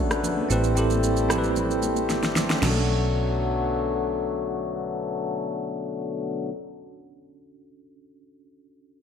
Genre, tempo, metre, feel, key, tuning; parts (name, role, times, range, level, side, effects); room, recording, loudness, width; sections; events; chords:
amapiano; 113 BPM; 4/4; straight; B minor; A4 = 440 Hz
bell-like tine electric piano; accompaniment; 0.0-9.0 s; C4 to B4; -29 LUFS; right 3 dB; medium stereo tremolo, low-pass filter
hand-pumped harmonium; sustained chords; 0.0-6.5 s; B2 to C4; -28 LUFS; left 4 dB; low-pass filter
vintage muted fingered electric bass; bass; 0.0-6.5 s; A1 to B1; -27 LUFS; equal
deep house drum kit; drums; 0.1-2.8 s; crash cymbal, rim click, shaker, snare drum; -28 LUFS; equal; overdrive, gated reverb
congas; percussion; 0.2-2.9 s; -32 LUFS; left 3 dB
moderate plate reverb, RT60 1.6 s; bright 1980s-style digital production; -22 LUFS; side -7 dB against mid
0.0-2.6 A section; 2.6-6.9 B section
filter sweep 0.0-2.6; drum fill 2.1-2.6
0.0 Bm7; 0.5 Am7; 2.6 Bm7